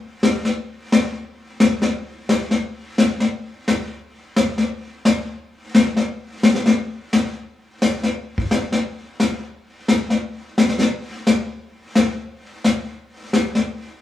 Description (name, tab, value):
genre	country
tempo	174 BPM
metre	4/4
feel	swing 63% on 8ths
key	none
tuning	none
part	vintage brush drum kit	drums	0.2-14.0 s	brushed snare drum, hi-hat, kick drum, snare drum	-17 LUFS	left 2 dB	none
room	moderate stone room reverb, RT60 1.1 s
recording	band playing live in one room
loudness	-18 LUFS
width	side -12 dB against mid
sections	0.0-2.0 A section; 2.0-14.0 B section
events	none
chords	none